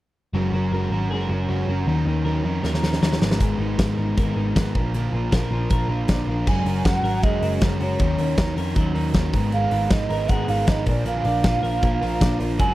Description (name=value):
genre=jangly indie pop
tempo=157 BPM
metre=4/4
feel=straight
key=F# major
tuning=A4 = 442 Hz
part: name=crunchy overdriven guitar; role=accompaniment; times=0.3-12.7 s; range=G#2 to A#4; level=-27 LUFS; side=right 4 dB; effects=spring reverb
part: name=twelve-string electric guitar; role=arpeggios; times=0.3-12.7 s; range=G#2 to A#4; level=-27 LUFS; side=left 4 dB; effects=slapback echo
part: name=vintage muted picked electric bass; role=bass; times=0.3-12.7 s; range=F#1 to E#2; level=-25 LUFS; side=equal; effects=none
part: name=big rock drum kit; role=drums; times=2.6-12.7 s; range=crash cymbal, hi-hat, kick drum, snare drum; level=-22 LUFS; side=equal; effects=none
part: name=mellow alto ocarina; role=melody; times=6.5-12.7 s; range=C#5 to G#5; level=-26 LUFS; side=right 3 dB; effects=slapback echo
room=small room ambience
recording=dry, close 1970s-style studio recording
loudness=-19 LUFS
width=side -16 dB against mid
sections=0.3-6.5 A section; 6.5-12.7 B section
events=drum fill 2.6-3.4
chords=0.3 F#add9; 1.9 D#m7; 3.2 G#madd9; 4.7 A#; 6.5 F#add9; 8.0 D#m7; 9.3 G#madd9; 10.9 A#